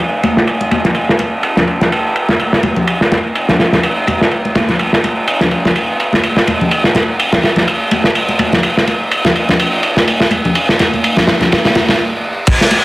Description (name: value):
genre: breakbeat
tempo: 125 BPM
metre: 4/4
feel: swing 56% on 16ths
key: none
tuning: none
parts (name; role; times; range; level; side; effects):
- crunchy breakbeat drum kit; drums; 0.2-12.8 s; crash cymbal, kick drum, ride cymbal, snare drum; -11 LUFS; equal; low-pass filter on kick, low-pass filter on cymbals, low-pass filter on snare, low-pass filter on room
- congas; percussion; 0.2-12.8 s; none; -18 LUFS; left 1 dB; none
room: wet studio reverb, RT60 0.5 s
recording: dense, heavily limited modern master, vinyl crackle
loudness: -11 LUFS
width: side -19 dB against mid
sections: 0.0-12.5 A section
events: stop 12.0-12.5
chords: none